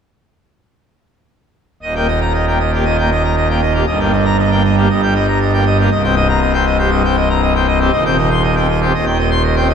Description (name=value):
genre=classical, organ toccata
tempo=118 BPM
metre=4/4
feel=straight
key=Eb major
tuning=A4 = 440 Hz
part: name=pipe organ, full organ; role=solo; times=1.8-9.7 s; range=C1 to C6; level=-12 LUFS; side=equal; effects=none
room=wet church reverb, RT60 2.8 s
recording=none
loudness=-12 LUFS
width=side -7 dB against mid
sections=1.8-9.7 A section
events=none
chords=1.8 Eb; 3.9 Eb/G; 5.9 Cm7; 7.9 Cm/Eb